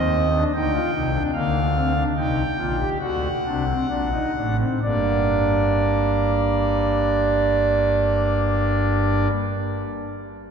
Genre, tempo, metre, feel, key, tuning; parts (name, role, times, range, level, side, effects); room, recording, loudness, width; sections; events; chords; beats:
classical, baroque-style 3-part fugue for pipe organ; 63-79 BPM; 4/4; straight; G minor; A4 = 441 Hz
pipe organ, foundations; solo; 0.0-9.3 s; G1 to G5; -19 LUFS; equal
wet cathedral reverb, RT60 4.5 s; minimal, uncompressed stereo recording; -19 LUFS; side -7 dB against mid
0.0-4.8 A section; 4.8-8.6 B section
slowing down 0.0-4.8
0.0 Cmadd9; 1.3 Gm/D; 3.0 D7; 4.8 Gm
0.55 | 1.34 2.16 3.01 3.89 | 4.82 5.77 6.72 7.67